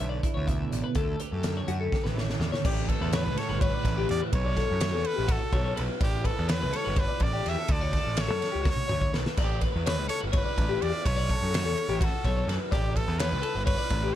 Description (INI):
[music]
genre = math rock and midwest emo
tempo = 250 BPM (eighths)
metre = 7/8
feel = straight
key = unclear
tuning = A4 = 441 Hz
[part]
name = twelve-string electric guitar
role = accompaniment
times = 0.0-4.3 s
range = D2 to G4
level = -34 LUFS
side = right 6 dB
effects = tremolo
[part]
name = twelve-string electric guitar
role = arpeggios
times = 0.0-14.2 s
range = F#4 to E5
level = -33 LUFS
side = left 6 dB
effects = none
[part]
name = fuzz picked electric bass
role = bass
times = 0.0-14.1 s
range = G1 to F#2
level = -30 LUFS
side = equal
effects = overdrive
[part]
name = loose indie drum kit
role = drums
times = 0.2-14.0 s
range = crash cymbal, hi-hat, kick drum, ride cymbal, snare drum, splash cymbal, toms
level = -29 LUFS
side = equal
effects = none
[part]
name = brilliant trumpet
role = melody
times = 2.7-14.2 s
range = G4 to E5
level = -33 LUFS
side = right 2 dB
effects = none
[sound]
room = little or no reverb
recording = dark, warm production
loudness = -25 LUFS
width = side -12 dB against mid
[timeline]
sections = 0.0-2.7 A section; 2.7-14.2 B section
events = drum fill 1.9-2.7, 8.7-9.4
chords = 0.0 Bmadd9; 1.0 Dmaj7; 2.7 A9sus4; 4.3 B7sus2; 6.0 A9sus4; 7.7 Dmaj7; 9.4 A9sus4; 11.0 B7sus2; 12.7 A9sus4